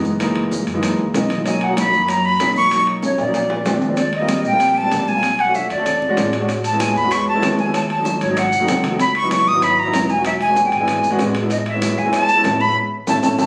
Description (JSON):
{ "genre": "Afro-Cuban jazz", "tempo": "191 BPM", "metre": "4/4", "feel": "straight", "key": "B major", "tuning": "A4 = 440 Hz", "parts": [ { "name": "warm grand piano", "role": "accompaniment", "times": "0.0-13.5 s", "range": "E3 to A4", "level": "-23 LUFS", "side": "equal", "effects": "none" }, { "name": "upright bass", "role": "bass", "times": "0.0-13.5 s", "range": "E1 to F#2", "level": "-31 LUFS", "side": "equal", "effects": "none" }, { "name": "congas", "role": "percussion", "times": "0.0-13.5 s", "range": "none", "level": "-30 LUFS", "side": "equal", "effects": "none" }, { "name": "maracas", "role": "percussion", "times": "0.0-13.5 s", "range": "none", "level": "-37 LUFS", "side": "equal", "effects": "none" }, { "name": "bongos", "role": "percussion", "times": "0.2-13.5 s", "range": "none", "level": "-30 LUFS", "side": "equal", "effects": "none" }, { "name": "timbales", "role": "percussion", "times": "0.2-13.5 s", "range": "none", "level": "-30 LUFS", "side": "equal", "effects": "none" }, { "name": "breathy bright concert flute", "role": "melody", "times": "1.2-13.5 s", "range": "B#4 to D#6", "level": "-20 LUFS", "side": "equal", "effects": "plate reverb" } ], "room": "wet studio reverb, RT60 0.9 s", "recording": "recorded on a phone in the room, club reverb", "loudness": "-18 LUFS", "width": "mono", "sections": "0.0-4.0 A section; 4.0-13.5 B section", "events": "drum fill 3.0-4.0, 8.2-9.0, 13.2; band accent 12.8-13.5", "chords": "0.2 F#13; 1.5 Bmaj9; 3.3 A#9; 4.0 D#69; 5.2 Bm9; 5.9 E13; 6.5 Amaj7; 7.7 D#m7b5; 8.4 G#7b9; 9.0 C#m11; 10.3 E9; 11.5 Amaj7; 12.8 A" }